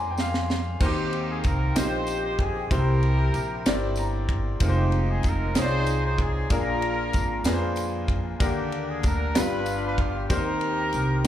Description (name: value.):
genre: slow gospel.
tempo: 63 BPM (dotted quarters).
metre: 6/8.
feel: straight.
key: Eb major.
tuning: A4 = 440 Hz.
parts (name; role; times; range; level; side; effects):
bright baby grand piano; accompaniment; 0.0-11.3 s; G2 to D6; -29 LUFS; left 2 dB; slapback echo.
dark studio string section; sustained chords; 0.0-0.8 s; C4 to Bb4; -45 LUFS; right 1 dB; none.
upright bass; bass; 0.0-11.2 s; F1 to F2; -27 LUFS; equal; none.
tight funk drum kit; drums; 0.2-11.3 s; crash cymbal, kick drum, ride cymbal, snare drum; -27 LUFS; right 1 dB; none.
tambourine; percussion; 0.2-11.3 s; none; -42 LUFS; right 2 dB; none.
warm horn section; melody; 0.8-11.3 s; Bb3 to C5; -29 LUFS; equal; slapback echo.
room: studio reverb.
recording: live gig heard through the venue's PA, club reverb.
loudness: -22 LUFS.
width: side -11 dB against mid.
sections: 0.8-11.3 A section.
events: drum fill 0.0-0.8; grand piano fill 3.7-4.6.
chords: 0.0 Bb9; 0.8 Eb6; 2.7 C7; 4.6 Fm7; 6.5 Bb7; 8.4 Ebmaj7; 9.4 G7; 10.3 Cm7.